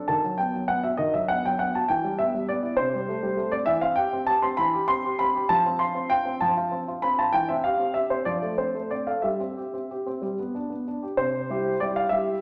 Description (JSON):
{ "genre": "classical-period piano sonatina", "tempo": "60-68 BPM (dotted quarters)", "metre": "6/8", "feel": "rubato", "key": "C major from 3.7 s", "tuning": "A4 = 440 Hz", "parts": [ { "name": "warm baby grand piano", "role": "solo", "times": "0.0-12.4 s", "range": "C3 to C6", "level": "-25 LUFS", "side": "equal", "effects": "none" } ], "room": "wet recital hall reverb, RT60 1.4 s", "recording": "none", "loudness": "-25 LUFS", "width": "mono", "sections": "0.0-11.2 A section; 11.2-12.4 B section", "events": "none", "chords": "0.1 B/D#; 1.9 Em; 2.8 Am7/C; 3.7 C/E; 5.5 F; 7.3 C/E; 8.3 F6; 9.2 C/G; 10.2 G; 11.2 C" }